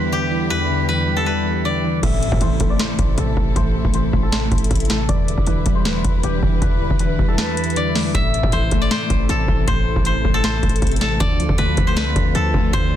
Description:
hip hop, trap; 157 BPM; 4/4; half-time; A minor; A4 = 440 Hz
steel-string zither; melody; 0.0-13.0 s; G4 to E5; -23 LUFS; left 2 dB; low-pass filter, tape echo
warbly lo-fi synth keys; accompaniment; 0.0-13.0 s; E2 to C4; -22 LUFS; equal; chorus, low-pass filter
warm studio string section; sustained chords; 0.0-13.0 s; C3 to B4; -29 LUFS; left 1 dB
hard-hitting 808-style bass; bass; 2.0-13.0 s; D1 to A2; -22 LUFS; equal
booming analog drum machine; drums; 2.0-12.9 s; crash cymbal, hi-hat, kick drum, snare drum; -19 LUFS; equal
impact and swell; sound effects; 2.0-3.6, 11.9-13.0 s; -31 LUFS; equal
little or no reverb; dense, heavily limited modern master; -16 LUFS; side -11 dB against mid
0.0-2.0 A section; 2.0-13.0 B section
impact 2.0-3.6; filter sweep 2.0-8.1; kick muted 7.4-8.1
0.0 Em7; 2.0 Am; 5.1 Em7; 8.1 Am; 11.2 Dm7

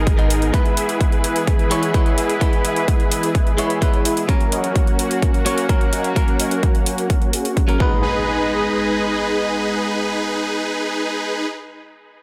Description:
EDM, festival progressive house; 128 BPM; 4/4; straight; G# minor; A4 = 440 Hz
lush unison pad; sustained chords; 0.0-11.5 s; E3 to D#5; -27 LUFS; equal; chorus, sidechain pumping
supersaw chords; riff; 0.0-11.5 s; C#4 to E5; -25 LUFS; equal; sidechain pumping, low-pass filter, dub echo
saturated sub bass; bass; 0.0-0.5 s; G#1; -23 LUFS; equal; sidechain pumping
electronic hi-hat; drums; 0.1-7.8 s; -29 LUFS; equal
electronic kick drum; drums; 0.1-7.9 s; -20 LUFS; equal
direct-recorded clean electric guitar; accompaniment; 0.2-11.5 s; G#2 to C#5; -27 LUFS; equal; sidechain pumping, dub echo
impact; sound effects; 7.9-11.5 s; -34 LUFS; equal
light reverb, digital ambience; -19 LUFS; mono
0.0-8.0 A section; 8.0-11.8 B section
filter sweep on supersaw synth 0.0-8.0
0.0 G#m; 0.5 E; 4.3 F#; 7.8 G#m

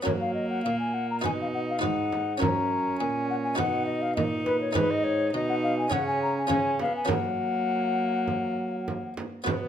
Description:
classical, renaissance-style consort dance; 102 BPM; 4/4; straight; F# major; A4 = 440 Hz
buff-stop harpsichord; accompaniment; 0.0-9.7 s; F#2 to C#5; -32 LUFS; equal
warm viola; accompaniment; 0.0-9.7 s; A#3 to D#4; -31 LUFS; equal
mellow hollow silver concert flute; melody; 0.1-9.6 s; B4 to A#5; -29 LUFS; left 4 dB
warm trombone; bass; 0.1-9.7 s; F#2 to F#3; -32 LUFS; right 3 dB
frame drum; percussion; 0.1-9.7 s; -32 LUFS; right 4 dB
moderate large studio reverb, RT60 1.4 s; minimal, uncompressed stereo recording; -24 LUFS; side -9 dB against mid
0.1-9.5 A section
0.1 F#; 1.2 B; 2.4 F#; 3.6 B; 4.8 G#m; 5.9 C#5; 6.5 C#; 7.1 F#

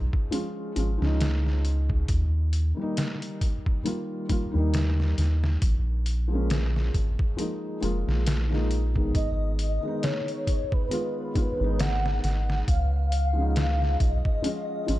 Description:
trip hop; 68 BPM; 4/4; swing 56% on 16ths; G# dorian; A4 = 440 Hz
felt-muted upright piano; accompaniment; 0.0-15.0 s; D#3 to E#4; -31 LUFS; left 1 dB; tremolo, low-pass filter, tape echo
soft dub sub bass; bass; 0.0-15.0 s; E#1 to D#2; -24 LUFS; equal
trip hop sampler-style drum kit; drums; 0.1-15.0 s; hi-hat, kick drum, snare drum; -28 LUFS; equal; studio reverb
pure breathy sine lead; melody; 9.2-15.0 s; B4 to F#5; -31 LUFS; left 1 dB; phaser, ensemble chorus, tape echo
little or no reverb; dark, warm production; -24 LUFS; side -16 dB against mid
0.0-15.0 A section
0.0 C#add9; 2.1 D#; 5.6 A#m7; 9.1 G#m; 12.7 C#add9

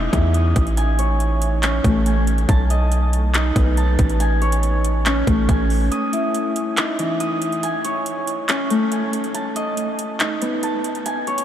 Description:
hip hop, trap; 140 BPM; 4/4; half-time; A4 = 440 Hz
Celtic harp; arpeggios; 0.0-11.4 s; E3 to D#6; -21 LUFS; equal; analog delay
hard-hitting 808-style bass; bass; 0.0-5.9 s; A1 to E2; -18 LUFS; equal
trap drum kit; drums; 0.1-11.4 s; handclaps, hi-hat, kick drum; -24 LUFS; equal; overdrive
moderate huge ambient reverb, RT60 7.8 s; dreamy mix soaked in reverb; -17 LUFS; side -10 dB against mid
0.0-11.4 A section
break 5.9-11.4
0.0 Esus4; 0.8 Amaj7; 2.5 B7; 4.2 Amaj7; 5.9 N.C.; 7.6 Amaj7; 9.3 B7

